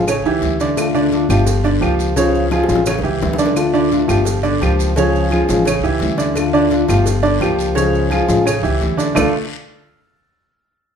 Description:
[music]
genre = latin, Cuban son and guajira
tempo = 172 BPM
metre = 4/4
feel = straight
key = D harmonic minor from 3.6 s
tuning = A4 = 440 Hz
[part]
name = nylon-string guitar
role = accompaniment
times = 0.0-9.3 s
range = C#3 to G4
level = -18 LUFS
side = left 4 dB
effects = none
[part]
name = bright baby grand piano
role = arpeggios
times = 0.0-9.3 s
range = C#3 to D5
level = -17 LUFS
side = right 3 dB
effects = none
[part]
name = upright bass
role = bass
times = 0.0-9.3 s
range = G1 to D2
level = -20 LUFS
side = equal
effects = none
[part]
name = claves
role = percussion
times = 0.1-9.2 s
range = none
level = -28 LUFS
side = left 2 dB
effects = none
[part]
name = cowbell and bongos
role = percussion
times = 0.1-9.2 s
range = none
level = -27 LUFS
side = left 4 dB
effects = none
[part]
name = guiro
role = percussion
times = 0.1-9.2 s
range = none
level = -34 LUFS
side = left 7 dB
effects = none
[part]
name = maracas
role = percussion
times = 0.1-9.2 s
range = none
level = -32 LUFS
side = right 7 dB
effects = none
[sound]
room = moderate large studio reverb, RT60 0.9 s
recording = band playing live in one room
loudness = -13 LUFS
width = side -7 dB against mid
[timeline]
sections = 0.0-3.6 A section; 3.6-9.2 B section; 9.2-10.6 C section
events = drum fill 2.5-3.6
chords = 0.1 A7; 0.8 Dm; 1.5 Gm7; 2.2 C#; 2.9 A7; 3.6 Dm; 4.3 Gm7; 5.0 C#; 5.7 A7; 6.4 Dm; 7.1 Gm7; 7.8 C#; 8.5 A7; 9.2 Dm

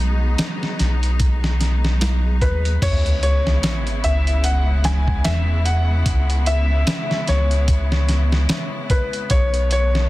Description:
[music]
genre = trip hop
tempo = 74 BPM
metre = 4/4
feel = swing 58% on 16ths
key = C# minor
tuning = A4 = 440 Hz
[part]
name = felt-muted upright piano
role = melody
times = 0.0-10.1 s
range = B4 to G#5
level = -25 LUFS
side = left 1 dB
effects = vintage 12-bit sampler grit, dub echo
[part]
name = bright symphonic string section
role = sustained chords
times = 0.0-10.1 s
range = C#3 to E4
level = -28 LUFS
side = left 2 dB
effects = none
[part]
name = soft dub sub bass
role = bass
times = 0.0-10.1 s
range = B1 to E2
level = -18 LUFS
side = equal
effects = none
[part]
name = flickering grainy texture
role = texture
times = 0.0-2.8 s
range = G#3 to G#4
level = -37 LUFS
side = right 1 dB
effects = built-in reverb
[part]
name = dusty soul sampler-style drum kit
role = drums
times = 0.4-10.1 s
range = crash cymbal, hi-hat, kick drum, snare drum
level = -22 LUFS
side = equal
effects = none
[part]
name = sub drop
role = sound effects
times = 2.9-6.1 s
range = none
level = -26 LUFS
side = equal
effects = none
[sound]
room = digital ambience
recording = dense, heavily limited modern master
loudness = -16 LUFS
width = side -18 dB against mid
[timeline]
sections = 0.0-2.8 A section; 2.8-10.1 B section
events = impact 2.8-6.1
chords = 0.0 B; 2.8 C#m7; 9.3 B7

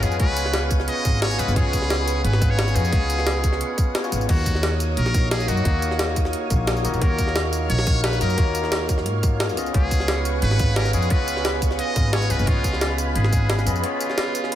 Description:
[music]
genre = liquid drum and bass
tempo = 176 BPM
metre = 4/4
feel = straight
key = unclear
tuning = A4 = 442 Hz
[part]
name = trumpet with metal mute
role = melody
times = 0.0-14.6 s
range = F4 to Eb5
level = -28 LUFS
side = equal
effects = ping-pong delay
[part]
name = barky tine electric piano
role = accompaniment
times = 0.0-14.6 s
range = Bb3 to F5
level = -27 LUFS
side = moving between left 4 dB and right 5 dB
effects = overdrive, auto-pan, ping-pong delay
[part]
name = lush unison pad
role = sustained chords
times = 0.0-14.6 s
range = Cb5 to F6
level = -32 LUFS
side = equal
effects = chorus, phaser, sidechain pumping
[part]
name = upright bass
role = bass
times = 0.0-13.8 s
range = Ab1 to Ab2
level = -23 LUFS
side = equal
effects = none
[part]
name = jungle sampler-style drum kit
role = drums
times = 0.0-14.6 s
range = crash cymbal, hi-hat, snare drum, tambourine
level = -27 LUFS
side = equal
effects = none
[part]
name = electronic kick drum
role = drums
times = 0.2-13.4 s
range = none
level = -21 LUFS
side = equal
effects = none
[sound]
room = moderate lush hall reverb, RT60 1.9 s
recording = dreamy mix soaked in reverb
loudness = -19 LUFS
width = side -12 dB against mid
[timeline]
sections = 0.0-14.6 A section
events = break 13.8-14.6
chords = 0.0 Db7; 4.3 Ebm9; 9.6 Db7

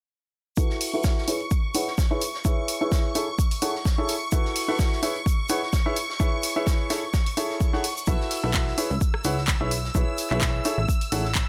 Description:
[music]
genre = piano house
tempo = 128 BPM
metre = 4/4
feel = swing 54% on 16ths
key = C# minor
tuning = A4 = 443 Hz
[part]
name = string machine, violins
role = sustained chords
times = 0.6-11.5 s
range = C#6 to E6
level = -35 LUFS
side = equal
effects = ensemble chorus, sidechain pumping
[part]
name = clear upright piano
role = riff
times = 0.6-11.2 s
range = E4 to F#5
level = -30 LUFS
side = equal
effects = sidechain pumping, low-pass filter
[part]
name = electronic kick drum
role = drums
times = 0.6-11.5 s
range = none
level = -26 LUFS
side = equal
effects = none
[part]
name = vintage drum kit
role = drums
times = 0.6-11.5 s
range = hi-hat, shaker, snare drum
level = -39 LUFS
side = equal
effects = sidechain pumping on hats, high-pass filter on hats, high-pass filter on snare, sidechain pumping on perc, high-pass filter on perc, high-pass filter on room
[part]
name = house drum kit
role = drums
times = 0.8-11.5 s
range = handclaps, hi-hat, rim click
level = -32 LUFS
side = equal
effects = none
[part]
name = plucky analog bass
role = bass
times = 8.1-11.4 s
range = A1 to C#2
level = -30 LUFS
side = equal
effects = tube saturation, sidechain pumping
[sound]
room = light reverb, studio reverb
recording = none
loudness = -25 LUFS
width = mono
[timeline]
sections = 0.6-11.5 A section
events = filter sweep on upright piano 0.6-11.5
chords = 0.6 B7sus4; 1.3 C#m7; 2.2 E6; 3.2 Amaj7; 4.3 B7sus4; 5.0 C#m7; 6.0 E6; 6.9 Amaj7; 8.1 B7sus4; 8.8 C#m7; 9.7 E6/B; 10.7 Amaj7

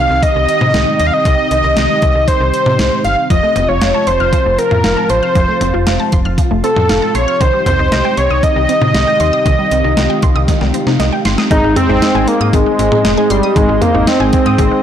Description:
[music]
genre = synth-pop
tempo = 117 BPM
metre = 4/4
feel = straight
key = unclear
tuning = A4 = 440 Hz
[part]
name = wide unison lead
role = melody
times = 0.0-14.8 s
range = G3 to F5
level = -14 LUFS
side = equal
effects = slapback echo
[part]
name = lush unison pad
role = sustained chords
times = 0.0-14.8 s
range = C3 to A5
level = -22 LUFS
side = right 1 dB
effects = chorus
[part]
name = slap-like FM bass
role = bass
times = 0.0-14.7 s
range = F1 to C3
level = -17 LUFS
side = equal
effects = tube saturation
[part]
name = clean 12-bit digital drum machine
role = drums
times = 0.2-14.7 s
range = cowbell, hi-hat, kick drum, snare drum, toms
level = -16 LUFS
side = equal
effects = overdrive
[part]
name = resonant blip pluck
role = arpeggios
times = 3.3-14.8 s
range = Eb3 to F6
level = -20 LUFS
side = equal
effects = phaser, slapback echo
[part]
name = soft round pluck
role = accompaniment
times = 11.5-14.8 s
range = Ab3 to Ab4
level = -17 LUFS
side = left 2 dB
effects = chorus
[sound]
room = light reverb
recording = blown-out, overdriven recording, overdrive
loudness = -10 LUFS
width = side -9 dB against mid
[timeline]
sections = 0.0-11.5 A section; 11.5-14.8 B section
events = drum fill 10.5-11.5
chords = 0.0 Cm; 3.3 F; 7.4 Cm; 11.5 Ab

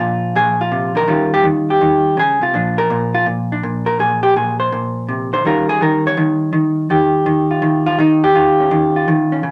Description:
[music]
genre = solo jazz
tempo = 165 BPM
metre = 4/4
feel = swing 66% on 8ths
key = unclear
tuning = A4 = 442 Hz
[part]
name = vintage hollow-body jazz guitar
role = solo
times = 0.0-9.5 s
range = Bb2 to Db5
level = -16 LUFS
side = equal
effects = none
[sound]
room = wet small room reverb, RT60 0.5 s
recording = none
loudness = -16 LUFS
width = mono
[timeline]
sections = 0.0-9.5 A section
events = hollow-body jazz guitar solo 0.0-9.5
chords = 0.0 Bb9; 1.1 Eb9; 2.5 Bbadd9; 5.4 Eb9

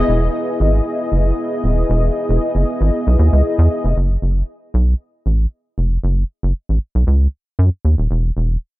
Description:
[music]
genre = early-eighties boogie funk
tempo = 116 BPM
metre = 4/4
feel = straight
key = unclear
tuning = A4 = 440 Hz
[part]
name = funky polysynth comp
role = accompaniment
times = 0.0-4.0 s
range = B3 to D#5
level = -20 LUFS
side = left 1 dB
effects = chorus
[part]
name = rubbery square bass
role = bass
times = 0.0-8.6 s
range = D#1 to F#2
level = -14 LUFS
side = equal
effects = none
[sound]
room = little or no reverb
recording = dark, warm production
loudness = -15 LUFS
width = side -18 dB against mid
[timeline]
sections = 0.0-4.0 A section; 4.0-8.8 B section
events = none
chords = 0.0 Emaj7; 4.0 F#m; 8.1 N.C.

